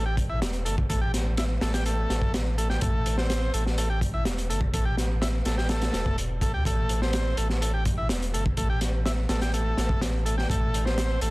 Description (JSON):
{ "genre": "breakbeat, breaks", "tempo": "125 BPM", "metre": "4/4", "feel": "straight", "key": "A minor", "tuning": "A4 = 441 Hz", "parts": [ { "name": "combo organ", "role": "riff", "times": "0.0-11.3 s", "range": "A3 to G4", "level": "-31 LUFS", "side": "equal", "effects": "tape echo" }, { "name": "saturated sub bass", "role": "bass", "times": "0.0-11.3 s", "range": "E1 to D2", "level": "-27 LUFS", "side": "equal", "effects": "none" }, { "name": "crunchy breakbeat drum kit", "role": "drums", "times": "0.2-11.3 s", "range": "hi-hat, kick drum, snare drum", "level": "-28 LUFS", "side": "equal", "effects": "none" } ], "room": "studio ambience", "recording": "dense, heavily limited modern master", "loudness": "-24 LUFS", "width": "side -21 dB against mid", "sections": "0.0-11.3 A section", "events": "none", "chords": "0.0 Am7" }